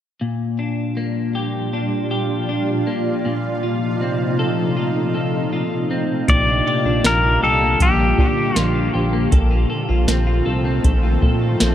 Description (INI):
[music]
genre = dream pop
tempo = 79 BPM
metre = 4/4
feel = straight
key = Bb major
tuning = A4 = 440 Hz
[part]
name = shimmering ambient pad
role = sustained chords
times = 0.8-11.7 s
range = Bb2 to F4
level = -22 LUFS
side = right 2 dB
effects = chorus, built-in reverb
[part]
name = clean electric guitar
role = arpeggios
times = 0.2-11.7 s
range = Bb2 to A4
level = -22 LUFS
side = left 2 dB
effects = analog chorus, tape echo
[part]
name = pedal steel guitar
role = melody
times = 6.3-8.9 s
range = G4 to D5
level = -19 LUFS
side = left 2 dB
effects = tape echo
[part]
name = chorused synth bass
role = bass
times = 6.3-11.7 s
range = Bb1 to Bb2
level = -20 LUFS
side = equal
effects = none
[part]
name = soft vintage rhythm box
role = drums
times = 6.3-11.7 s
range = hi-hat, kick drum, snare drum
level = -17 LUFS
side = equal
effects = none
[sound]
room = light reverb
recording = echo-heavy mix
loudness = -16 LUFS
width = side -11 dB against mid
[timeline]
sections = 0.2-6.3 A section; 6.3-11.7 B section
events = none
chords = 0.2 Bb6; 3.2 F7/Bb; 6.3 Bb6; 9.3 F7/Bb